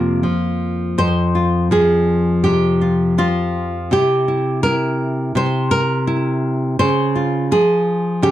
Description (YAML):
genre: folk, solo fingerstyle acoustic guitar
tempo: 83 BPM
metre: 4/4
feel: rubato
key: F harmonic minor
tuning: A4 = 440 Hz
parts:
  - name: nylon-string guitar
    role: solo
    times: 0.0-8.3 s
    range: F2 to C5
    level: -15 LUFS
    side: equal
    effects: slapback echo
room: light reverb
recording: dry, close 1970s-style studio recording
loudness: -15 LUFS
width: side -13 dB against mid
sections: 1.0-8.3 A section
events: none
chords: 0.0 F5; 1.0 Fm; 3.9 C; 6.8 Dbmaj7